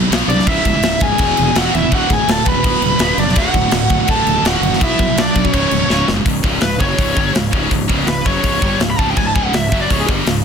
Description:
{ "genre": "heavy metal", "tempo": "165 BPM", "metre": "4/4", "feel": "straight", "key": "C# phrygian", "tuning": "A4 = 440 Hz", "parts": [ { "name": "scooped high-gain guitar", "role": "riff", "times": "0.0-10.4 s", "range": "C#2 to B3", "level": "-21 LUFS", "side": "left 14 dB", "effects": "distortion" }, { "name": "scooped high-gain guitar", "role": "riff", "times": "0.0-10.4 s", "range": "C#2 to B3", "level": "-20 LUFS", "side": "right 12 dB", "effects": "distortion" }, { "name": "fuzz fingered electric bass", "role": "bass", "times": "0.0-10.4 s", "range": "C#1 to B#1", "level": "-22 LUFS", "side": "equal", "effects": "overdrive" }, { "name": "tight metal drum kit", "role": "drums", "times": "0.1-10.4 s", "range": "crash cymbal, hi-hat, kick drum, snare drum", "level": "-18 LUFS", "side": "equal", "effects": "none" }, { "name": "high-gain lead guitar", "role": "melody", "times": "0.3-10.1 s", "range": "G#4 to B5", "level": "-19 LUFS", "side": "left 1 dB", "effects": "distortion, ping-pong delay" }, { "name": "bluesy overdriven lead guitar", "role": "second line", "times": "0.3-6.1 s", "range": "C#4 to B4", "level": "-24 LUFS", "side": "right 3 dB", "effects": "distortion" } ], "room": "light reverb", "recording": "dense, heavily limited modern master", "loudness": "-12 LUFS", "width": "side -7 dB against mid", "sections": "0.0-6.3 A section; 6.3-10.4 B section", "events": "drum fill 5.9-6.3; lead electric guitar solo 6.3-10.4", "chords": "0.5 C#m; 1.2 E; 1.9 D5; 2.6 Bm/D; 3.4 D; 4.8 B5; 5.5 C#5" }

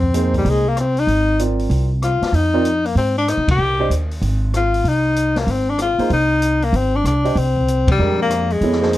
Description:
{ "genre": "modal jazz", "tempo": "191 BPM", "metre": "4/4", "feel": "swing 64% on 8ths", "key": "F dorian", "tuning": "A4 = 439 Hz", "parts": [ { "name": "warm tenor saxophone", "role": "melody", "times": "0.0-9.0 s", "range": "G3 to G4", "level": "-18 LUFS", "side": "left 3 dB", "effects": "none" }, { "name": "upright bass", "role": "bass", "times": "0.0-9.0 s", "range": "Ab1 to C3", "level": "-19 LUFS", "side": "right 1 dB", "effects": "none" }, { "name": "open jazz drum kit", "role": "drums", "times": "0.0-9.0 s", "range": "hi-hat, kick drum, ride cymbal, rim click, snare drum", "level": "-27 LUFS", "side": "left 2 dB", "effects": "none" }, { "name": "warm grand piano", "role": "accompaniment", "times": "0.1-3.9, 6.0-9.0 s", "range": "Ab3 to Eb5", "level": "-21 LUFS", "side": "right 4 dB", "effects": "none" } ], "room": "light reverb", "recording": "dark, warm production", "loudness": "-15 LUFS", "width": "side -15 dB against mid", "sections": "0.0-9.0 A section", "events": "band accent 3.4, 7.8", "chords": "0.0 Fm11" }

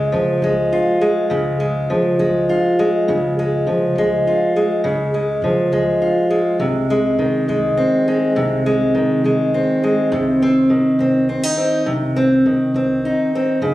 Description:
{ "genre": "acoustic folk duo or small band", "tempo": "68 BPM (dotted quarters)", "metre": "6/8", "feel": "straight", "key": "unclear", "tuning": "A4 = 443 Hz", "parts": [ { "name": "fingerpicked steel-string acoustic guitar", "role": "accompaniment", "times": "0.0-13.7 s", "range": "C3 to F4", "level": "-15 LUFS", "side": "equal", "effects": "none" }, { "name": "upright bass", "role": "bass", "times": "0.0-13.7 s", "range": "C2 to Db3", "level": "-25 LUFS", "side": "equal", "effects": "none" } ], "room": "light reverb", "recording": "recorded on a phone in the room, studio reverb, compression", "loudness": "-15 LUFS", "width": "side -15 dB against mid", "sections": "0.0-13.6 A section", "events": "none", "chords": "0.0 Db; 6.6 Ab/C; 10.1 Cm" }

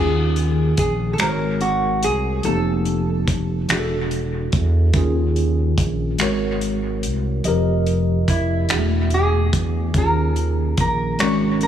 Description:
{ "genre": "slow six-eight R&B", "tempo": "48 BPM (dotted quarters)", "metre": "6/8", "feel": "straight", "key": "unclear", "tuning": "A4 = 440 Hz", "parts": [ { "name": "lap resonator guitar", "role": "melody", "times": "0.0-4.1, 8.3-11.7 s", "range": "Fb4 to Db5", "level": "-23 LUFS", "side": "right 1 dB", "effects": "analog delay" }, { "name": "mellow tine electric piano", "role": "accompaniment", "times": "0.0-11.7 s", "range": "Eb3 to Eb5", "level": "-22 LUFS", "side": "left 1 dB", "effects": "slow stereo tremolo" }, { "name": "smooth gliding synth bass", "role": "bass", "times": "0.0-11.7 s", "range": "E1 to E2", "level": "-21 LUFS", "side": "equal", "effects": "none" }, { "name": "damped 70s drum kit", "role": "drums", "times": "0.4-11.7 s", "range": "finger snaps, hi-hat, kick drum", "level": "-24 LUFS", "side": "equal", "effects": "analog delay" } ], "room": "light reverb, small room ambience", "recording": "echo-heavy mix, studio ambience", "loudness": "-17 LUFS", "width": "side -10 dB against mid", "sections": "0.0-11.7 A section", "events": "none", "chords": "0.0 Eb9sus4; 1.2 Ab9sus4; 2.4 F9sus4; 3.7 E9sus4; 4.9 Eb9sus4; 6.2 Ab9sus4; 7.4 F9sus4; 8.7 E9sus4; 9.9 Eb9sus4" }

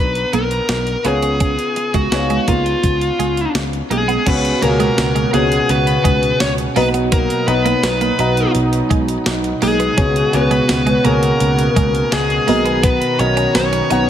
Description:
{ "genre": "1980s-style pop", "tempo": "84 BPM", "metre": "4/4", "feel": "straight", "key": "unclear", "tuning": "A4 = 443 Hz", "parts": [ { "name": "dark smooth lead guitar", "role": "melody", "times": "0.0-14.1 s", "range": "E#4 to C#5", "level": "-19 LUFS", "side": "left 1 dB", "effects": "overdrive, shimmer reverb" }, { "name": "warm baby grand piano", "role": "accompaniment", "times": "0.0-14.1 s", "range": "B2 to A#5", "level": "-21 LUFS", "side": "left 1 dB", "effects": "shimmer reverb" }, { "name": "sustaining fretless electric bass", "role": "bass", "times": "0.0-14.1 s", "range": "B1 to C#2", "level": "-21 LUFS", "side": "equal", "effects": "none" }, { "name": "clean 12-bit digital drum machine", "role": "drums", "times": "0.2-14.1 s", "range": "crash cymbal, hi-hat, kick drum, snare drum, tambourine", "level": "-21 LUFS", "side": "equal", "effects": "none" }, { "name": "twelve-string electric guitar", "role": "riff", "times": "0.3-14.0 s", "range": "G#3 to D#4", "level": "-24 LUFS", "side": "right 7 dB", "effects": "analog chorus, shimmer reverb" }, { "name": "direct-recorded clean electric guitar", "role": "second line", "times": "3.9-14.1 s", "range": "G#3 to C#4", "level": "-26 LUFS", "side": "left 5 dB", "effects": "none" }, { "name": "warm analog pad", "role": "sustained chords", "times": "4.3-14.1 s", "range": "B2 to A#5", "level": "-22 LUFS", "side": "right 2 dB", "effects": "chorus, shimmer reverb" } ], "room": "light reverb, digital ambience", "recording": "none", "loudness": "-13 LUFS", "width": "side -10 dB against mid", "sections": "0.0-4.3 A section; 4.3-14.1 B section", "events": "none", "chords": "0.0 Bmadd9; 1.0 C#7; 4.3 C#7sus4; 6.8 Bmaj7; 10.0 C#7sus4; 12.5 Bmaj7" }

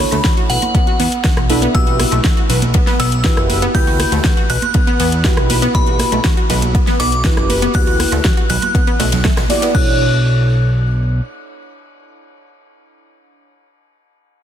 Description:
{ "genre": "progressive house", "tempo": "120 BPM", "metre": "4/4", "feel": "straight", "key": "B minor", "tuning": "A4 = 438 Hz", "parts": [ { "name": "glassy synth bell", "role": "melody", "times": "0.0-13.6 s", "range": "F#5 to G6", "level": "-22 LUFS", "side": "left 2 dB", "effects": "chorus, sidechain pumping, digital delay" }, { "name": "deep mellow chord stab", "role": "stabs", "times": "0.0-13.7 s", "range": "D4 to E5", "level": "-22 LUFS", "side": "right 2 dB", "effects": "chorus, phaser, sidechain pumping, digital delay" }, { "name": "fat analog bass", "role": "bass", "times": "0.0-11.2 s", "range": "F#1 to E2", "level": "-17 LUFS", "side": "equal", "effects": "tube saturation, sidechain pumping" }, { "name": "crisp fusion drum kit", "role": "drums", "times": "0.0-9.7 s", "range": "hi-hat, ride cymbal, snare drum", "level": "-29 LUFS", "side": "left 2 dB", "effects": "sidechain pumping on cymbals, high-pass filter on cymbals, sidechain pumping on hats, high-pass filter on hats, high-pass filter on snare, high-pass filter on room" }, { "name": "deep house drum kit", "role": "drums", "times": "0.0-9.8 s", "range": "crash cymbal, hi-hat, ride cymbal, rim click, snare drum", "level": "-21 LUFS", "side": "left 1 dB", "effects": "overdrive, sidechain pumping on hats, sidechain pumping on cymbals" }, { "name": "wide unison pluck", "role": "arpeggios", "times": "0.1-10.0 s", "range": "A3 to B4", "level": "-21 LUFS", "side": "equal", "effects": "sidechain pumping, digital delay" }, { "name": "woodblock and congas", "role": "percussion", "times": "0.1-9.6 s", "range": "none", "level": "-26 LUFS", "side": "right 5 dB", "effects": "sidechain pumping on perc" }, { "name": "electronic kick drum", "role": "drums", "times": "0.2-9.8 s", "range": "none", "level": "-16 LUFS", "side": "equal", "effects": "overdrive" } ], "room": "light reverb, small room ambience", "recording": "dense, heavily limited modern master", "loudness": "-12 LUFS", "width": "side -10 dB against mid", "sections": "0.0-9.7 A section; 9.7-13.7 B section", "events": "drop 0.0-9.7", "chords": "0.0 Bm11; 1.7 Emadd9; 9.7 Bm11" }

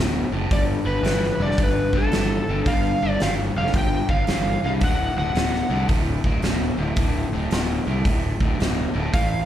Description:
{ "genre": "blues rock power trio and southern rock", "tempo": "111 BPM", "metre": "4/4", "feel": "swing 65% on 8ths", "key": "unclear", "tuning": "A4 = 440 Hz", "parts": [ { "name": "overdriven electric guitar", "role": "riff", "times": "0.0-9.5 s", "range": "D2 to E3", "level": "-26 LUFS", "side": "left 2 dB", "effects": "slapback echo" }, { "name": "fuzz fingered electric bass", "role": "bass", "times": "0.0-9.4 s", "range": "D1 to C2", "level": "-24 LUFS", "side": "equal", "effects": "overdrive" }, { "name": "overdriven slide guitar", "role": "melody", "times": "0.5-5.9, 9.1-9.5 s", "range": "A4 to G5", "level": "-25 LUFS", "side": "right 1 dB", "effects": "slapback echo, plate reverb" }, { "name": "huge arena drum kit", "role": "drums", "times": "0.5-9.3 s", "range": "hi-hat, kick drum, snare drum", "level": "-24 LUFS", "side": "equal", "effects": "none" } ], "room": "light reverb", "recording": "live gig heard through the venue's PA, club reverb", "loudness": "-19 LUFS", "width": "side -11 dB against mid", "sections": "0.0-9.5 A section", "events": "none", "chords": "0.0 D; 0.5 G7; 4.8 D" }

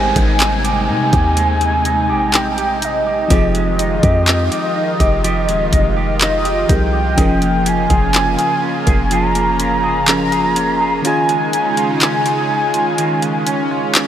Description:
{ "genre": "contemporary R&B", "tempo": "62 BPM", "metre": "4/4", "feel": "straight", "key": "Ab major", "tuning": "A4 = 443 Hz", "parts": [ { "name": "warm velvety synth lead", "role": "melody", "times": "0.0-14.1 s", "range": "Eb5 to Bb5", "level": "-18 LUFS", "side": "equal", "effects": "chorus, diffuse ambient delay" }, { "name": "FM electric piano with soft pad layer", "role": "accompaniment", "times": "0.0-14.1 s", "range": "Eb3 to Eb5", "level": "-23 LUFS", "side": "left 2 dB", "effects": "chorus" }, { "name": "lush unison pad", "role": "sustained chords", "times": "0.0-14.1 s", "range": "C3 to F4", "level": "-23 LUFS", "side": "equal", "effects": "chorus, sidechain pumping" }, { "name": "electric guitar with an envelope filter", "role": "arpeggios", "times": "0.0-14.1 s", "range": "Eb3 to Ab4", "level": "-22 LUFS", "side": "right 5 dB", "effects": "lush chorus, diffuse ambient delay" }, { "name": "warm 808-style bass", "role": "bass", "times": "0.0-11.0 s", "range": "Eb1 to C3", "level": "-20 LUFS", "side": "equal", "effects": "none" }, { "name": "downlifter", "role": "sound effects", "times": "0.0-7.2 s", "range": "none", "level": "-29 LUFS", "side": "equal", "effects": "none" }, { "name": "smooth R&B drum kit", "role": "drums", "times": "0.2-14.1 s", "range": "handclaps, hi-hat, kick drum", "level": "-18 LUFS", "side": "equal", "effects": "none" } ], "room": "moderate huge ambient reverb, RT60 6.4 s", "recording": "dreamy mix soaked in reverb", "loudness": "-13 LUFS", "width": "side -10 dB against mid", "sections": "0.0-14.1 A section", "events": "kick muted 11.0-14.1", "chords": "0.0 Abmaj7; 3.3 Fm9; 7.2 Db6/F; 11.0 Eb9sus4" }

